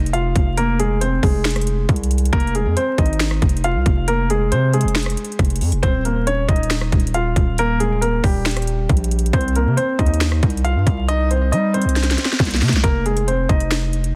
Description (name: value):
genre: hip hop, trap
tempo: 137 BPM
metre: 4/4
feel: half-time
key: F minor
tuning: A4 = 441 Hz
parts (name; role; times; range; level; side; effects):
- dark baby grand piano; melody; 0.0-14.1 s; G3 to F5; -24 LUFS; equal; none
- distorted 808-style bass; bass; 0.0-14.1 s; Eb1 to G3; -22 LUFS; equal; distortion
- trap drum kit; drums; 0.1-14.1 s; finger snaps, hi-hat, kick drum, rim click, snare drum; -22 LUFS; equal; none
room: little or no reverb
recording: dense, heavily limited modern master, vinyl crackle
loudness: -18 LUFS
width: mono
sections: 0.0-12.8 A section; 12.8-14.2 B section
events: drum fill 12.0-12.8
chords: 0.0 Fm; 5.8 Ebadd9; 9.3 Cm; 12.8 Fm